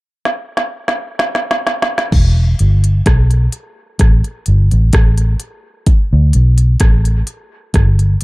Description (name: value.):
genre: dub reggae.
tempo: 64 BPM.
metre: 4/4.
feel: straight.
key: E minor.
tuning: A4 = 441 Hz.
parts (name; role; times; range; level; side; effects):
organic electronic drum kit; drums; 0.3-8.2 s; crash cymbal, hi-hat, kick drum, rim click, snare drum; -14 LUFS; equal; none.
vintage muted fingered electric bass; bass; 2.1-8.2 s; E1 to D2; -10 LUFS; equal; none.
room: little or no reverb.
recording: none.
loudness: -11 LUFS.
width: side -21 dB against mid.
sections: 0.0-2.1 A section; 2.1-8.2 B section.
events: drum fill 0.2-2.1.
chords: none.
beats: 0.25 1.18 | 2.12 3.06 4.00 4.93 | 5.87 6.80 7.74.